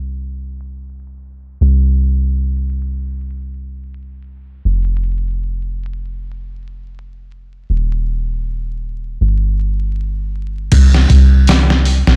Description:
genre	trip hop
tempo	79 BPM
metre	4/4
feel	swing 55% on 16ths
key	C minor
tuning	A4 = 441 Hz
part	soft 808-style bass	bass	0.0-12.2 s	Eb1 to C2	-17 LUFS	equal	tube saturation
part	trip hop sampler-style drum kit	drums	10.7-12.2 s	crash cymbal, hi-hat, kick drum, snare drum	-15 LUFS	equal	none
room	little or no reverb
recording	blown-out, overdriven recording, vinyl crackle, overdrive, low-pass filter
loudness	-15 LUFS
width	mono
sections	0.0-10.7 A section; 10.7-12.2 B section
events	filter sweep 0.0-10.7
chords	none

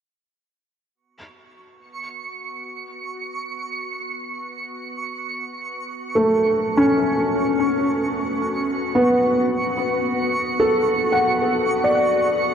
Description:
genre	ambient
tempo	55 BPM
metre	4/4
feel	straight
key	unclear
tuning	A4 = 440 Hz
part	organ-like drone	drone	1.6-12.5 s	B3 to F#4	-30 LUFS	left 1 dB	ensemble chorus, built-in reverb
part	twinkling granular texture	texture	1.9-12.5 s	C#6	-28 LUFS	right 4 dB	built-in reverb, shimmer reverb
part	felt-muted upright piano	arpeggios	6.2-12.5 s	A3 to F#5	-18 LUFS	equal	ping-pong delay, shimmer reverb
room	wet huge ambient reverb, RT60 7.7 s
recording	worn, warbling old tape, cassette tape, warbly pitch drift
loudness	-18 LUFS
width	side -8 dB against mid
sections	0.9-12.5 A section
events	fade-in on synth drone 0.9-12.5; fade-in on synth texture 0.9-12.5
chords	0.9 B5

